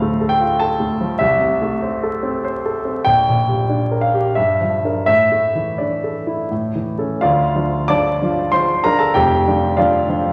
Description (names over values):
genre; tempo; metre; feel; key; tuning
classical, romantic character piece for solo piano; 82-101 BPM; 3/4; rubato; D minor; A4 = 438 Hz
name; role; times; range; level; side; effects
warm grand piano; solo; 0.0-10.3 s; F1 to D6; -18 LUFS; equal; none
room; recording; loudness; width
wet recital hall reverb, RT60 1.6 s; vinyl crackle, nothing above 11.0 kHz; -18 LUFS; mono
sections
0.0-7.2 A section; 7.2-10.3 B section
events
none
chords
0.0 Dm; 1.2 Am/C; 3.1 Gm/Bb; 4.4 Gm7; 5.1 Asus4; 6.5 A; 7.2 Dm; 9.2 Dm/F